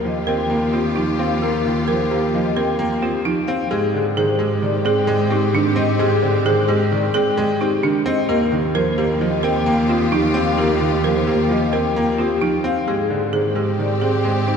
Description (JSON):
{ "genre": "classical, minimalist pattern music", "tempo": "131 BPM", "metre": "5/4", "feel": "straight", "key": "Eb major", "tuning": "A4 = 441 Hz", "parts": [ { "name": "bright clarinet", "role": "second line", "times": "0.0-14.6 s", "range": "G4", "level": "-29 LUFS", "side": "right 2 dB", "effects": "none" }, { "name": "bright baby grand piano", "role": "accompaniment", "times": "0.0-14.6 s", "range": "D3 to C4", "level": "-22 LUFS", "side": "equal", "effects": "none" }, { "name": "rich symphonic string section", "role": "sustained chords", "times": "0.0-14.6 s", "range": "C4 to G4", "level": "-28 LUFS", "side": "left 2 dB", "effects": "none" }, { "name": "folk marimba with hard mallets", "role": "arpeggios", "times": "0.0-14.6 s", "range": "D4 to Bb4", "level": "-22 LUFS", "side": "right 3 dB", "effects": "none" }, { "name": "rich cello", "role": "bass", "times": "0.0-14.6 s", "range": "Eb2 to Ab2", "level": "-24 LUFS", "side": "right 2 dB", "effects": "none" }, { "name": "vibraphone with medium mallets", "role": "melody", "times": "0.1-14.6 s", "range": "G4 to G5", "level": "-24 LUFS", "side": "left 7 dB", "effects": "none" } ], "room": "wet church reverb, RT60 3.3 s", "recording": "dark, warm production", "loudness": "-16 LUFS", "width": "side -6 dB against mid", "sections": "0.0-14.6 A section", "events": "none", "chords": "0.0 Ebadd9; 3.7 Abmaj7; 8.3 Ebadd9; 12.9 Abmaj7" }